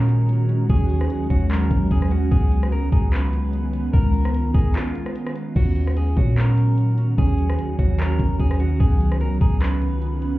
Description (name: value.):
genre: hip hop, atmospheric cloud-rap.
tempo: 148 BPM.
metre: 4/4.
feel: half-time.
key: Eb minor.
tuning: A4 = 440 Hz.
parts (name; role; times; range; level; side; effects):
electric guitar at the edge of break-up; melody; 0.0-10.4 s; F4 to Cb5; -32 LUFS; left 1 dB; spring reverb, low-pass filter, digital delay.
ethereal airy pad; sustained chords; 0.0-10.4 s; Eb3 to Gb4; -26 LUFS; right 1 dB; ensemble chorus, built-in reverb, phaser, sidechain pumping.
mellow electric guitar; arpeggios; 0.0-10.4 s; Cb4 to Bb5; -31 LUFS; right 6 dB; low-pass filter, digital delay.
warm 808-style bass; bass; 0.0-10.4 s; Db2 to Bb2; -20 LUFS; equal; none.
smooth R&B drum kit; drums; 0.1-10.3 s; crash cymbal, handclaps, hi-hat, kick drum, rim click; -22 LUFS; equal; none.
room: little or no reverb.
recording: heard muffled through a wall, club reverb, EQ.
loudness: -18 LUFS.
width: side -17 dB against mid.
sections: 0.0-5.6 A section; 5.6-10.4 A section.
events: break 4.7-5.6.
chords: 0.0 Ebm7; 2.3 Db13; 5.6 Ebm7; 8.8 Db13.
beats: 0.29 | 0.69 1.10 1.51 1.91 | 2.32 2.72 3.13 3.53 | 3.94 4.34 4.75 5.15 | 5.56 5.96 6.37 6.78 | 7.18 7.59 7.99 8.40 | 8.80 9.21 9.61 10.02.